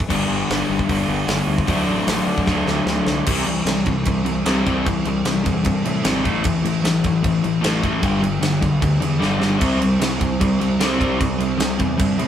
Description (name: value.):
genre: punk rock.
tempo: 151 BPM.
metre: 4/4.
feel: straight.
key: unclear.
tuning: A4 = 440 Hz.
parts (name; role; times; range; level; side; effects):
fuzz picked electric bass; bass; 0.0-12.3 s; G1 to D3; -26 LUFS; equal; overdrive.
big rock drum kit; drums; 0.0-12.3 s; crash cymbal, hi-hat, kick drum, snare drum; -23 LUFS; equal; none.
crunchy overdriven guitar; riff; 0.1-12.3 s; G2 to D4; -22 LUFS; right 4 dB; none.
overdriven semi-hollow guitar; riff; 0.1-12.3 s; G2 to D4; -22 LUFS; left 5 dB; none.
room: moderate stone room reverb, RT60 1.0 s.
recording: band playing live in one room.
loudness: -17 LUFS.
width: side -10 dB against mid.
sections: 0.0-3.3 A section; 3.3-12.3 B section.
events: drum fill 2.5-3.3, 9.2-9.6.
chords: 0.1 G; 1.7 D; 3.3 C; 6.2 A5; 8.0 G5; 9.6 C5.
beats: | 0.09 0.49 0.89 1.28 | 1.68 2.08 2.48 2.88 | 3.27 3.67 4.07 4.46 | 4.86 5.26 5.65 6.05 | 6.45 6.84 7.24 7.64 | 8.03 8.43 8.82 9.22 | 9.61 10.01 10.40 10.80 | 11.20 11.59 11.98.